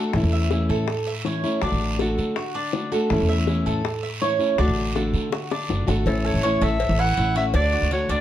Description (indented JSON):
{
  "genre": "latin, Cuban son and guajira",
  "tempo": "162 BPM",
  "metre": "4/4",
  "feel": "straight",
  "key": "A major",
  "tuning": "A4 = 440 Hz",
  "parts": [
    { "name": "nylon-string guitar", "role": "accompaniment", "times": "0.0-8.2 s", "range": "D3 to F#4", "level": "-25 LUFS", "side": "left 2 dB", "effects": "none" },
    { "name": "Cuban tres", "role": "arpeggios", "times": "0.0-8.2 s", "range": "D4 to E5", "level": "-27 LUFS", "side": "right 3 dB", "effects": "none" },
    { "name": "upright bass", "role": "bass", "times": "0.1-8.2 s", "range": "F#1 to D3", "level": "-24 LUFS", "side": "equal", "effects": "none" },
    { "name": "bongos and cowbell", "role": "percussion", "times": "0.1-8.2 s", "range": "none", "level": "-30 LUFS", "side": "left 6 dB", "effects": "none" },
    { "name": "guiro", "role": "percussion", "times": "0.1-8.2 s", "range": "none", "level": "-35 LUFS", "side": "right 5 dB", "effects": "none" },
    { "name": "breathy clarinet", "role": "melody", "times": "6.1-8.2 s", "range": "A4 to F#5", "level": "-24 LUFS", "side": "right 1 dB", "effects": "none" }
  ],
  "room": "moderate studio reverb, RT60 0.6 s",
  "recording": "dark, warm production",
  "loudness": "-20 LUFS",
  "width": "side -12 dB against mid",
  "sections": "0.0-6.1 A section; 6.1-8.2 B section",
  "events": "drum fill 5.3-6.1",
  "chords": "0.1 A; 1.6 D; 3.1 A; 4.6 D; 6.1 A; 7.5 D"
}